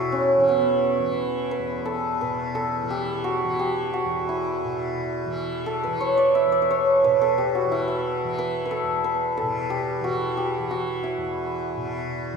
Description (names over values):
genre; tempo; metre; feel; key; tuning
indian classical, Hindustani; 88 BPM; 5/4; straight; E raga bhimpalasi; A4 = 440 Hz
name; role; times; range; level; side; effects
santur; melody; 0.0-12.4 s; B3 to E5; -22 LUFS; right 1 dB; none
tanpura; drone; 0.0-12.4 s; E2 to E3; -32 LUFS; left 1 dB; none
room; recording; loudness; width
wet concert hall reverb, RT60 2.2 s; recorded in a church or concert hall; -22 LUFS; side -5 dB against mid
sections
0.0-12.4 A section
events
speeding up 0.0-12.4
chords
none